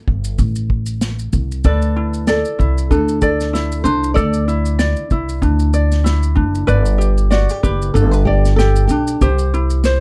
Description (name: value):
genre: acoustic pop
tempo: 95 BPM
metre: 4/4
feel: swing 55% on 16ths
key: unclear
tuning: A4 = 441 Hz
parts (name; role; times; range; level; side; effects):
- upright bass; bass; 0.1-10.0 s; F#1 to D2; -18 LUFS; equal; none
- unplugged drum kit; drums; 0.1-10.0 s; kick drum, shaker, snare drum; -23 LUFS; equal; none
- ukulele; accompaniment; 1.6-10.0 s; D4 to D5; -22 LUFS; equal; none
- flamenco guitar; melody; 1.7-9.5 s; F#4 to D5; -24 LUFS; equal; none
room: light reverb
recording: dark, warm production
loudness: -16 LUFS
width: mono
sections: 0.0-10.0 A section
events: none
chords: 0.0 Am; 1.6 Dsus2; 6.7 G; 9.2 C